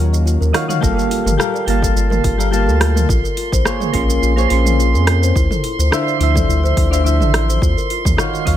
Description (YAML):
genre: sunset chillout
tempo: 106 BPM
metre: 4/4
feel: swing 53% on 16ths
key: G minor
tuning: A4 = 440 Hz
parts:
  - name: airy breathy pad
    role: sustained chords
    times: 0.0-0.8 s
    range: Eb3 to Db4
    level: -26 LUFS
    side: equal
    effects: chorus
  - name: kalimba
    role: arpeggios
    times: 0.0-8.6 s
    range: E4 to Eb5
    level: -24 LUFS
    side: left 4 dB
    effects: ping-pong delay
  - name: round analog bass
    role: bass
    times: 0.0-8.6 s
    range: G1 to F2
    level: -16 LUFS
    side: equal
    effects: none
  - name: deep house drum kit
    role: drums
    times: 0.1-8.6 s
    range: hi-hat, rim click, shaker, toms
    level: -22 LUFS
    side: right 2 dB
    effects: overdrive
  - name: soft electric-piano-like synth keys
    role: accompaniment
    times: 0.5-8.6 s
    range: D3 to C6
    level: -20 LUFS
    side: equal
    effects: chorus, tremolo, auto-pan, vintage 12-bit sampler grit, ping-pong delay
  - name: electronic kick drum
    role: drums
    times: 0.8-8.6 s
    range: none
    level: -20 LUFS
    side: equal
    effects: overdrive
  - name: drifting glass-harmonics texture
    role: texture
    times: 1.6-8.6 s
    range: C6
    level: -25 LUFS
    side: right 8 dB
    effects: chorus, built-in reverb
room: little or no reverb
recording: none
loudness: -13 LUFS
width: side -11 dB against mid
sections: 0.8-8.6 A section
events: none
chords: 0.0 Ebm9; 0.8 Gm9; 3.1 Bbm9; 5.4 Dm9; 7.6 Ebm9